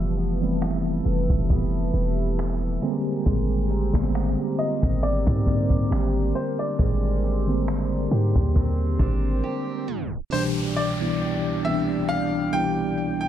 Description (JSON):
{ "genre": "contemporary R&B", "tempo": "68 BPM", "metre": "4/4", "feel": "swing 54% on 16ths", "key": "unclear", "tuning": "A4 = 440 Hz", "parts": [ { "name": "clear grand piano", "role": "melody", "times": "0.0-13.3 s", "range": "C5 to G5", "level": "-30 LUFS", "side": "left 1 dB", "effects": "ping-pong delay" }, { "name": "mellow tine electric piano", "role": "accompaniment", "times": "0.0-13.3 s", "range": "C2 to E4", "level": "-26 LUFS", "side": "left 1 dB", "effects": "medium stereo tremolo" }, { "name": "chorused pulse-width pad", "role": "sustained chords", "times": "0.0-13.3 s", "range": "D4 to C6", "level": "-32 LUFS", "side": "equal", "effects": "none" }, { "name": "picked steel-string acoustic guitar", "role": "arpeggios", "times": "0.0-10.9 s", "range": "F3 to A4", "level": "-32 LUFS", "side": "right 7 dB", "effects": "none" }, { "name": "warm 808-style bass", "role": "bass", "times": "0.0-9.4 s", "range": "E1 to Ab2", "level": "-24 LUFS", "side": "equal", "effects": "none" }, { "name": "jazz brush drum kit", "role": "drums", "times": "0.2-9.2 s", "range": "finger snaps, hi-hat, kick drum", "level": "-25 LUFS", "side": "equal", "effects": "none" }, { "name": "swell and downlifter", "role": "sound effects", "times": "9.1-13.3 s", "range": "none", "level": "-37 LUFS", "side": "equal", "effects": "none" } ], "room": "small room ambience", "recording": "low-pass filter, tape stop", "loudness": "-21 LUFS", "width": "side -11 dB against mid", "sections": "0.0-10.3 A section; 10.3-13.3 B section", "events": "filter sweep 0.0-10.3; swell 9.1-10.3; break 9.4-10.3; tape stop 9.9-10.3", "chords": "0.0 Fmaj9#11; 2.8 Abmaj9#11; 10.3 Cmaj9" }